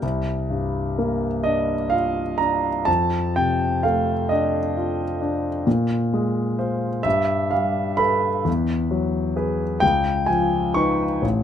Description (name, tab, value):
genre	classical, impressionist solo piano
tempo	43 BPM (dotted quarters)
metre	6/8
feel	uneven beats, rubato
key	unclear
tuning	A4 = 439 Hz
part	warm concert grand piano	solo	0.0-11.4 s	A1 to Db6	-20 LUFS	equal	none
room	light reverb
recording	close, detailed microphones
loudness	-20 LUFS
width	side -9 dB against mid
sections	0.0-11.4 A section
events	none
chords	0.0 C9sus4; 2.9 F6; 5.7 Bbsus2; 7.1 Gadd9; 8.5 Eadd9; 9.8 Db9